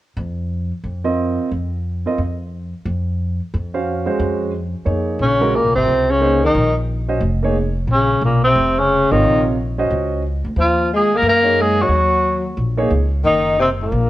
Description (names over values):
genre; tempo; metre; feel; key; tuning
modal jazz; 179 BPM; 4/4; swing 63% on 8ths; Bb minor; A4 = 440 Hz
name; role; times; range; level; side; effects
upright bass; bass; 0.2-14.1 s; F1 to Gb2; -21 LUFS; equal; none
warm concert grand piano; accompaniment; 1.0-12.9 s; C3 to F5; -20 LUFS; right 2 dB; none
breathy tenor saxophone; melody; 5.2-14.1 s; Bb3 to Bb4; -16 LUFS; equal; none
warm tenor saxophone; second line; 5.2-14.1 s; Bb2 to Bb3; -20 LUFS; left 3 dB; none
room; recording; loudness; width
moderate large studio reverb, RT60 1.2 s; worn, warbling old tape, cassette tape, warbly pitch drift; -15 LUFS; side -15 dB against mid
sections
0.0-5.2 A section; 5.2-14.1 B section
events
none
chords
0.0 Bbm11; 5.2 Bbmadd9; 10.6 Ebm11